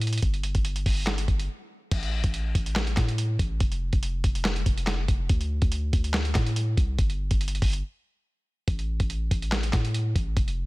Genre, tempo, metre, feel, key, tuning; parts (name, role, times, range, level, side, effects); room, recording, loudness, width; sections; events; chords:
hip hop, trap; 142 BPM; 4/4; half-time; A4 = 441 Hz
long sustained 808-style bass; bass; 0.0-10.7 s; F1 to A2; -27 LUFS; equal
lo-fi sampler-style drum kit; drums; 0.0-10.6 s; crash cymbal, handclaps, hi-hat, kick drum, snare drum; -25 LUFS; equal
little or no reverb; dense, heavily limited modern master; -24 LUFS; side -21 dB against mid
0.0-1.9 A section; 1.9-10.7 B section
break 1.5-1.9, 7.8-8.7